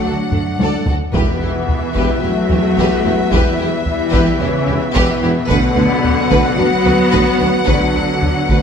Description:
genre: cinematic, epic orchestral film score.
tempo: 110 BPM.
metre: 4/4.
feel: straight.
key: E minor.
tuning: A4 = 440 Hz.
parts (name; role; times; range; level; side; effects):
warm symphonic violin section; melody; 0.0-8.6 s; E5 to F#5; -24 LUFS; left 5 dB; none.
warm symphonic violin section; second line; 0.0-8.6 s; D4 to D5; -22 LUFS; left 3 dB; none.
warm symphonic viola section; accompaniment; 0.0-8.6 s; D3 to B3; -22 LUFS; left 1 dB; none.
mellow French horn section; sustained chords; 0.0-8.6 s; B3 to F#4; -20 LUFS; left 6 dB; none.
warm trombone section; sustained chords; 0.0-8.6 s; E3 to D4; -24 LUFS; right 2 dB; none.
warm woodwind section; sustained chords; 0.0-8.6 s; A3 to F#5; -26 LUFS; equal; none.
mellow tuba; bass; 0.0-8.6 s; E1 to D2; -23 LUFS; right 4 dB; none.
rich symphonic cello section; bass; 0.0-8.6 s; B2 to F#3; -21 LUFS; right 3 dB; none.
rich symphonic double bass section; bass; 0.1-8.6 s; D2 to E2; -24 LUFS; right 4 dB; none.
taiko ensemble; drums; 0.3-8.6 s; none; -20 LUFS; equal; none.
timpani; percussion; 1.1-1.9 s; E2; -28 LUFS; left 2 dB; none.
room: moderate scoring stage reverb, RT60 1.8 s.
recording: none.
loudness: -13 LUFS.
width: side -7 dB against mid.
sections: 0.0-8.6 A section.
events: drum fill 0.3-1.1.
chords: 0.0 D; 1.1 Em; 5.5 Bm/D.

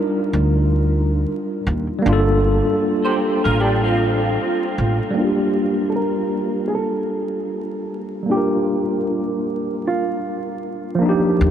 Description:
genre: hip hop.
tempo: 77 BPM.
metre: 4/4.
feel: swing 58% on 16ths.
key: G minor.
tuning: A4 = 440 Hz.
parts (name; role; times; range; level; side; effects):
tine electric piano; accompaniment; 0.0-11.5 s; F3 to Bb4; -20 LUFS; equal; overdrive, fast stereo tremolo, cassette tape, low-pass filter.
upright bass; bass; 0.3-5.0, 11.4-11.5 s; G1 to Eb2; -18 LUFS; equal; none.
electric guitar through a small old amp; second line; 3.0-5.0 s; C4 to C5; -24 LUFS; right 1 dB; ensemble chorus, low-pass filter, analog delay.
archtop guitar, miked and amplified; melody; 5.9-11.0 s; F4 to Bb4; -25 LUFS; right 2 dB; low-pass filter, analog delay.
room: moderate huge ambient reverb, RT60 7.6 s.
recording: dreamy mix soaked in reverb, vinyl crackle.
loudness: -17 LUFS.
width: side -9 dB against mid.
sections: 0.0-5.2 A section; 5.2-11.5 B section.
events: filter sweep 5.2-11.5.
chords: 0.0 Ebmaj9; 2.0 Gm7; 5.2 Gm9; 11.0 Ebmaj9.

